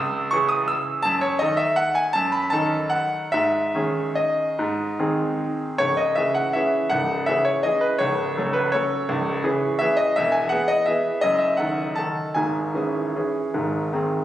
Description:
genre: classical, piano waltz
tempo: 141-178 BPM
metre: 3/4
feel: rubato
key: C# minor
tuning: A4 = 441 Hz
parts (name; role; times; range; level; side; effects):
- bright concert grand piano; solo; 0.0-14.2 s; C#1 to E6; -20 LUFS; equal; none
room: wet recital hall reverb, RT60 1.6 s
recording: recorded on a phone in the room, club reverb, compression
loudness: -20 LUFS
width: side -12 dB against mid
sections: 0.0-5.8 A section; 5.8-14.2 B section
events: none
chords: 0.0 C#m; 1.1 D#dim/F#; 3.3 G#sus4; 4.6 G#; 5.8 C#m; 8.0 F#m/C#; 9.1 C#m; 10.2 E; 11.2 D#dim/F#; 12.4 C#m/G#; 13.5 G#

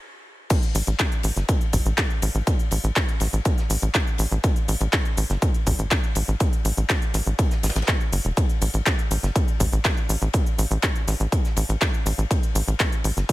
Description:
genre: progressive house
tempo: 122 BPM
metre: 4/4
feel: straight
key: unclear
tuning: A4 = 440 Hz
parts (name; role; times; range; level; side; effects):
- big rock drum kit; drums; 0.5-13.3 s; ride cymbal, snare drum; -35 LUFS; left 5 dB; sidechain pumping on cymbals, high-pass filter on cymbals, high-pass filter on snare, high-pass filter on room
- big-room dance drum kit; drums; 0.5-13.3 s; crash cymbal, handclaps, hi-hat, shaker; -27 LUFS; equal; high-pass filter on hats, high-pass filter on snare, high-pass filter on cymbals, high-pass filter on perc, high-pass filter on room
- electronic kick drum; drums; 0.5-13.3 s; none; -22 LUFS; equal; none
- tight sequencer bass; bass; 0.7-13.2 s; E1 to A1; -22 LUFS; equal; sidechain pumping
room: little or no reverb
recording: none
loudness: -20 LUFS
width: side -17 dB against mid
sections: 0.5-13.3 A section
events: stop 0.0-0.5; drop 0.5-13.3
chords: none

